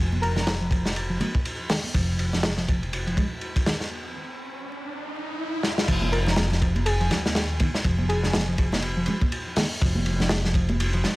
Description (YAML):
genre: breakbeat, breaks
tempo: 122 BPM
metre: 4/4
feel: swing 57% on 16ths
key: F minor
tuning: A4 = 440 Hz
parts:
  - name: hollow-body short-scale picked electric bass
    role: riff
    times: 0.0-11.1 s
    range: Eb3 to Ab3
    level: -30 LUFS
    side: equal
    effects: tape echo
  - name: upright bass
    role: bass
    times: 0.0-11.0 s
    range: F1 to Eb2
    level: -26 LUFS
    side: equal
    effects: none
  - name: congas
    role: percussion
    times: 0.1-11.2 s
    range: none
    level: -32 LUFS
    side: right 2 dB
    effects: none
  - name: airy dreamy lead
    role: melody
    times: 0.2-0.4, 6.1-8.3 s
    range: Ab4 to Bb4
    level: -32 LUFS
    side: left 1 dB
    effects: chorus, old record sound, tape echo
  - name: crunchy breakbeat drum kit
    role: drums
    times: 0.2-11.2 s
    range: crash cymbal, hi-hat, kick drum, ride cymbal, snare drum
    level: -25 LUFS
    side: equal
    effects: none
  - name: riser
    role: sound effects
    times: 3.4-5.9 s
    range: none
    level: -34 LUFS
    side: equal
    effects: none
room: small room ambience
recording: vinyl crackle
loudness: -22 LUFS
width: side -20 dB against mid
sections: 0.0-5.9 A section; 5.9-11.2 B section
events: riser 3.4-5.9; break 3.9-5.9; drum fill 5.6; drop 5.9-11.2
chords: none